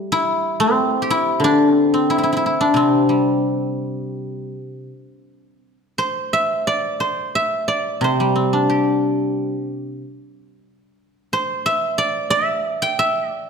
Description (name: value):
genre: chinese traditional, Chinese solo plucked strings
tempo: 78-94 BPM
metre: 4/4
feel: rubato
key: C gong mode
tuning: A4 = 436 Hz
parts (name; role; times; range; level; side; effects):
- guzheng; solo; 0.0-13.5 s; C3 to G5; -17 LUFS; equal; none
room: moderate recital hall reverb, RT60 1.6 s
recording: none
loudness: -17 LUFS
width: side -6 dB against mid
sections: 0.0-5.6 A section; 5.6-13.5 B section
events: none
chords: none